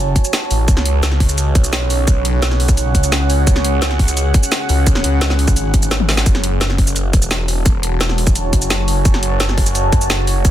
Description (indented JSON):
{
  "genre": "dark technical drum and bass",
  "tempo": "172 BPM",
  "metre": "4/4",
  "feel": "straight",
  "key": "F# minor",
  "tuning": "A4 = 441 Hz",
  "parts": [
    { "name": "deep dark ambient pad", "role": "sustained chords", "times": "0.0-10.5 s", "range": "C#4 to A5", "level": "-22 LUFS", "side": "right 2 dB", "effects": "chorus, built-in reverb, sidechain pumping" },
    { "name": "phased detuned saw bass", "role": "bass", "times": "0.0-10.5 s", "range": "E1 to C#2", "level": "-17 LUFS", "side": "equal", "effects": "phaser, overdrive, sidechain pumping" },
    { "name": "drum and bass drum kit", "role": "drums", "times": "0.2-10.5 s", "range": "hi-hat, shaker, snare drum, toms", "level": "-19 LUFS", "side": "equal", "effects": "overdrive, small room ambience" },
    { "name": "electronic kick drum", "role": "drums", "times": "0.2-10.5 s", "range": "none", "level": "-14 LUFS", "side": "equal", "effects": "small room ambience" }
  ],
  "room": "light reverb",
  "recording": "dense, heavily limited modern master",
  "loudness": "-13 LUFS",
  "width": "side -12 dB against mid",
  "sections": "0.0-10.5 A section",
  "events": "drum fill 6.0",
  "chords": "0.0 F#madd9; 0.7 C#sus4; 6.3 F#madd9"
}